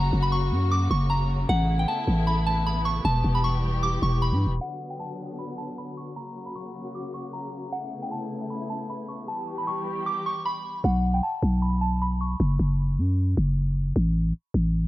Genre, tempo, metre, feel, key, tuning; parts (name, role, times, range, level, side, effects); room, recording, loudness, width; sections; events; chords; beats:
hip hop, trap; 154 BPM; 4/4; half-time; A4 = 439 Hz
soft synth bell; melody; 0.0-12.4 s; F#5 to D6; -30 LUFS; equal; chorus, low-pass filter
dark symphonic string section; sustained chords; 0.0-10.8 s; C#3 to G4; -34 LUFS; left 2 dB
growling 808-style bass; bass; 0.0-4.6, 10.8-14.9 s; E1 to G2; -22 LUFS; equal
small room ambience; dark, warm production, low-pass filter; -23 LUFS; side -16 dB against mid
0.0-4.6 A section; 4.6-10.8 B section; 10.8-14.9 C section
filter sweep 4.6-10.8
0.0 F#; 1.5 Aadd9; 3.0 Em; 4.6 Bm; 6.2 F#; 7.7 Aadd9; 9.3 Em; 10.8 Asus2/B; 12.4 N.C.
0.32 0.71 1.10 | 1.49 1.88 2.27 2.66 | 3.05 3.44 3.83 4.22 | 4.61 5.00 5.39 5.78 | 6.17 6.56 6.95 7.33 | 7.72 8.11 8.50 8.89 | 9.28 9.67 10.06 10.45 | 10.84 11.23 11.62 12.01 | 12.40 12.79 13.18 13.57 | 13.96 14.35 14.74